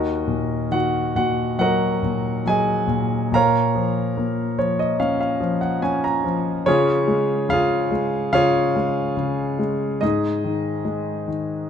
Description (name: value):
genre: classical, lyrical solo piano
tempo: 71 BPM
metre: 4/4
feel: rubato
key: Eb minor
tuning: A4 = 440 Hz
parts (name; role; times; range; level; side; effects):
- clear grand piano; solo; 0.0-11.7 s; Eb2 to Bb5; -19 LUFS; equal; none
room: light reverb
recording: close, detailed microphones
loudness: -19 LUFS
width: side -8 dB against mid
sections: 0.0-11.7 A section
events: grand piano fill 4.2-6.7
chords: 0.0 Ebm; 3.3 Bbm; 6.7 Db; 10.0 Ab5